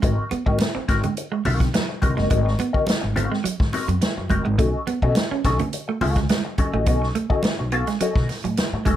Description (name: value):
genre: funk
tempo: 105 BPM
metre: 4/4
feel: straight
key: Ab mixolydian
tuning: A4 = 440 Hz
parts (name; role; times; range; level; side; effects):
- mellow electric guitar; accompaniment; 0.0-9.0 s; C4 to F5; -26 LUFS; left 4 dB; wah, lush chorus
- clean electric guitar; riff; 0.0-9.0 s; Gb3 to C#4; -27 LUFS; right 7 dB; none
- upright bass; bass; 0.0-9.0 s; F1 to B2; -25 LUFS; equal; none
- swinging big-band drum kit; drums; 0.0-9.0 s; hi-hat, kick drum, snare drum; -23 LUFS; equal; none
- congas; percussion; 0.0-9.0 s; none; -31 LUFS; right 3 dB; none
room: light reverb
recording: none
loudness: -19 LUFS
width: side -12 dB against mid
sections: 0.0-9.0 A section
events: none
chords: 0.0 Ab9; 4.6 B9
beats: | 0.03 0.60 1.17 1.74 | 2.31 2.88 3.45 4.02 | 4.58 5.16 5.72 6.29 | 6.86 7.43 8.00 8.57